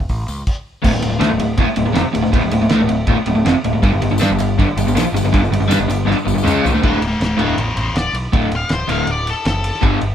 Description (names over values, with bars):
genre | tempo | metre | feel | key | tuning
garage rock duo or trio | 160 BPM | 4/4 | straight | D major from 6.8 s | A4 = 441 Hz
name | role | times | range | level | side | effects
growling picked electric bass | bass | 0.0-10.1 s | D1 to G2 | -21 LUFS | equal | overdrive
cloth-damped thuddy drum kit | drums | 0.0-10.1 s | crash cymbal, hi-hat, kick drum, ride cymbal, snare drum, toms | -20 LUFS | equal | none
tambourine | percussion | 0.1-0.4, 3.8-6.8 s | none | -34 LUFS | left 3 dB | none
crunchy overdriven guitar | riff | 0.8-10.0 s | D2 to D4 | -16 LUFS | equal | none
octave-fuzz lead guitar | melody | 6.8-9.8 s | F#4 to F5 | -21 LUFS | left 2 dB | distortion
room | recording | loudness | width
moderate stone room reverb, RT60 1.0 s | band playing live in one room | -14 LUFS | side -9 dB against mid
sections
0.8-6.8 A section; 6.8-10.1 B section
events
drum fill 6.1-6.8; lead electric guitar solo 6.8-10.1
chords
0.0 A; 0.8 D5; 3.8 G5; 6.8 D5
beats
0.09 0.46 | 0.84 1.21 1.58 1.96 | 2.33 2.71 3.08 3.46 | 3.83 4.21 4.58 4.95 | 5.33 5.70 6.08 6.45 | 6.83 7.20 7.58 7.95 | 8.33 8.71 9.08 9.46 | 9.83